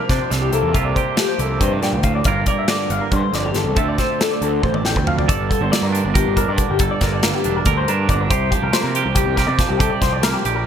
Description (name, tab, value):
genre	math rock and midwest emo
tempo	278 BPM (eighths)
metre	7/8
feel	straight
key	unclear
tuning	A4 = 439 Hz
part	twangy electric guitar	accompaniment	0.0-10.7 s	D2 to Bb4	-22 LUFS	right 10 dB	wide subtle chorus
part	electric guitar through a small old amp	arpeggios	0.0-10.7 s	G4 to G5	-22 LUFS	left 6 dB	lush chorus, ping-pong delay
part	fuzz picked electric bass	bass	0.1-10.6 s	E1 to C3	-22 LUFS	equal	overdrive
part	modern studio drum kit	drums	0.1-10.6 s	hi-hat, kick drum, snare drum, toms	-21 LUFS	equal	gated reverb
room	light reverb, small room reverb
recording	bright 1980s-style digital production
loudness	-16 LUFS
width	side -8 dB against mid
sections	0.0-5.3 A section; 5.3-10.7 B section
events	drum fill 4.6-5.3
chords	0.0 C9sus4; 2.3 Gm7; 3.8 Dm7; 5.3 Gmadd9; 8.3 C7sus4